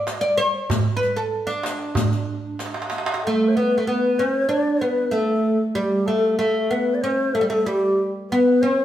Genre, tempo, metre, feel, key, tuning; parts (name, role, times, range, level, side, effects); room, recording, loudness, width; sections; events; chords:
Arabic maqam ensemble; 95 BPM; 4/4; straight; D maqam rast; A4 = 440 Hz
oud; melody; 0.0-8.8 s; G3 to D5; -21 LUFS; right 1 dB
darbuka; percussion; 0.1-3.2 s; -25 LUFS; right 3 dB
riq; percussion; 0.1-3.0 s; -31 LUFS; left 6 dB
breathy low ney; second line; 3.2-8.8 s; G4 to D5; -21 LUFS; left 2 dB
wet stone room reverb, RT60 1.3 s; band playing live in one room; -19 LUFS; side -11 dB against mid
0.0-3.2 A section; 3.2-8.8 B section
drum fill 2.6-3.2